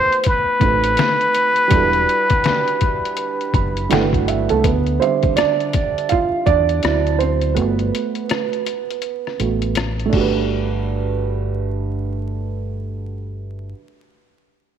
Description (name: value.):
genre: hip hop, jazz-hop.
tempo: 82 BPM.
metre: 4/4.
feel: swing 63% on 16ths.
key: G major.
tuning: A4 = 438 Hz.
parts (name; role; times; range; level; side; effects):
trumpet with plunger mute; melody; 0.0-3.9 s; B4 to C5; -16 LUFS; left 1 dB; none.
dark upright piano; accompaniment; 0.0-13.8 s; D3 to B5; -20 LUFS; right 8 dB; low-pass filter.
trip hop sampler-style drum kit; drums; 0.1-10.3 s; crash cymbal, hi-hat, kick drum, rim click, snare drum; -21 LUFS; left 2 dB; none.
deep dub fingered electric bass; bass; 0.6-13.7 s; E1 to E2; -22 LUFS; equal; none.
room: moderate echo chamber reverb, RT60 2.2 s.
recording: 1960s-style stereo, vinyl crackle.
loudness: -16 LUFS.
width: side -8 dB against mid.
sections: 0.0-4.6 A section; 4.6-10.5 B section; 10.5-13.4 C section.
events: upright piano fill 3.2-4.6; upright piano solo 4.6-10.5; filter sweep on upright piano 4.6-10.5; break 7.6-10.5.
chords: 0.0 B7b9; 1.7 Em9; 3.9 Gmaj13; 4.6 Dm11; 6.8 D9; 7.6 Gmaj7.